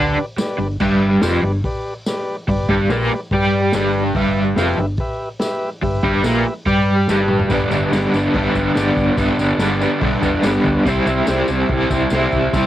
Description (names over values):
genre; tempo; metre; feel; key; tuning
garage rock duo or trio; 143 BPM; 4/4; straight; G major; A4 = 440 Hz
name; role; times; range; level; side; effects
combo organ; sustained chords; 0.0-12.7 s; G4 to G5; -25 LUFS; left 1 dB; none
crunchy overdriven guitar; riff; 0.0-12.7 s; F2 to G4; -16 LUFS; equal; tremolo
hollow-body short-scale fingered electric bass; bass; 0.0-12.7 s; E1 to G2; -23 LUFS; equal; tube saturation
vintage drum kit; drums; 0.4-12.6 s; crash cymbal, hi-hat, kick drum, snare drum, toms; -25 LUFS; equal; cassette tape
tambourine; percussion; 0.4-12.6 s; none; -36 LUFS; left 4 dB; none
room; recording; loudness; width
light reverb; home recording on cassette; -15 LUFS; side -13 dB against mid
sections
0.0-7.5 A section; 7.5-12.7 B section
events
drum fill 7.1-7.5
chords
0.0 G; 10.9 C